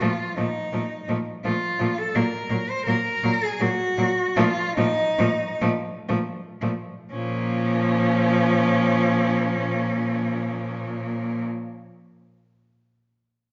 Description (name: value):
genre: classical, lyrical piece for cello ensemble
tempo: 54-86 BPM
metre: 3/4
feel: rubato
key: Bb minor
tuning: A4 = 440 Hz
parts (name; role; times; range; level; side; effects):
- rich cello; melody; 0.0-11.5 s; Bb3 to C5; -29 LUFS; equal; none
- rich cello; second line; 0.0-11.4 s; A3 to Db4; -32 LUFS; equal; none
- rich cello; accompaniment; 0.0-11.5 s; F3 to Gb3; -30 LUFS; equal; none
- clear cello; bass; 0.0-11.5 s; Bb2; -28 LUFS; equal; none
room: wet recital hall reverb, RT60 1.6 s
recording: nothing above 7.6 kHz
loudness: -24 LUFS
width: mono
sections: 0.0-7.1 A section; 7.1-12.7 B section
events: slowing down 1.1-7.1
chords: 0.0 F7/Bb; 2.2 Ab7sus2/Bb (rootless); 4.4 F7(no3)/Bb